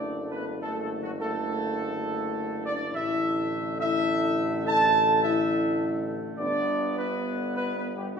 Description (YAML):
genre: classical, ceremonial fanfare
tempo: 104 BPM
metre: 3/4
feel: straight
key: D major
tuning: A4 = 440 Hz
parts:
  - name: dark trumpet section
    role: melody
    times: 0.0-8.2 s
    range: F#4 to A5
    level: -27 LUFS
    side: right 2 dB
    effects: none
  - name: bright trombone section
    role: sustained chords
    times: 0.0-8.2 s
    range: D3 to B3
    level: -34 LUFS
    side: left 1 dB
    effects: none
  - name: mellow French horn section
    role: sustained chords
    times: 0.0-8.2 s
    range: F#3 to A4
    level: -31 LUFS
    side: left 2 dB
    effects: none
  - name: clear tuba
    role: bass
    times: 0.0-8.2 s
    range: F#1 to D2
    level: -33 LUFS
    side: equal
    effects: none
room: wet recital hall reverb, RT60 1.4 s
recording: recorded in a church or concert hall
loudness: -24 LUFS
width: side -6 dB against mid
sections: 0.0-8.2 A section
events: none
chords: 0.0 D/F#; 2.9 Asus4; 6.4 G